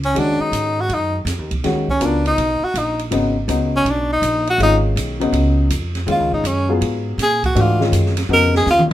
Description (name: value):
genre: modal jazz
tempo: 162 BPM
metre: 4/4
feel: swing 66% on 8ths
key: unclear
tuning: A4 = 440 Hz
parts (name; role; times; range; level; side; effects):
- upright bass; bass; 0.0-8.9 s; G#1 to A#2; -20 LUFS; equal; none
- open jazz drum kit; drums; 0.0-8.9 s; hi-hat, kick drum, ride cymbal, snare drum, toms; -27 LUFS; right 2 dB; none
- warm tenor saxophone; melody; 0.1-8.8 s; C#4 to A#4; -17 LUFS; equal; none
- dark baby grand piano; accompaniment; 0.1-8.9 s; C#3 to A#4; -21 LUFS; left 3 dB; none
room: moderate studio reverb, RT60 0.8 s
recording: minimal, uncompressed stereo recording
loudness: -15 LUFS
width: side -13 dB against mid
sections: 0.0-8.9 A section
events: tenor saxophone solo 0.0-8.9; drum fill 8.7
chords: 0.0 G#m9; 3.1 C#sus2/G#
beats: | 0.16 0.53 0.90 1.27 | 1.64 2.01 2.38 2.75 | 3.12 3.49 3.86 4.23 | 4.60 4.97 5.33 5.71 | 6.08 6.44 6.81 7.18 | 7.55 7.92 8.29 8.66